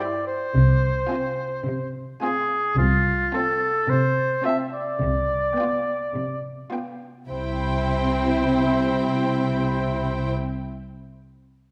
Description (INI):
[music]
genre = cinematic, playful, whimsical film cue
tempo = 107 BPM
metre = 4/4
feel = straight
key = C major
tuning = A4 = 441 Hz
[part]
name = rich studio violin section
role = melody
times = 0.0-10.3 s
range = G5 to A5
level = -37 LUFS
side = equal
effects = none
[part]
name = mellow oboe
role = second line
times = 0.0-10.3 s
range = F4 to E5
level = -27 LUFS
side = equal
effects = none
[part]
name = rich studio violin section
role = second line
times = 0.0-10.3 s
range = E4 to G4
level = -34 LUFS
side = equal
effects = none
[part]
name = rich studio viola section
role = accompaniment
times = 0.0-10.3 s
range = B3 to E4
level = -32 LUFS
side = equal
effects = none
[part]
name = rich studio cello section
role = bass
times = 0.6-10.3 s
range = C3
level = -28 LUFS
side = equal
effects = none
[part]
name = rich studio double bass section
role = bass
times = 0.6-10.3 s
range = C2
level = -29 LUFS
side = equal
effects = none
[sound]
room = wet scoring stage reverb, RT60 1.6 s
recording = none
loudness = -23 LUFS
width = mono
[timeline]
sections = 0.0-7.3 A section; 7.3-9.6 B section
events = none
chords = 0.0 C; 0.5 Fm/C; 5.0 G7/C; 7.3 C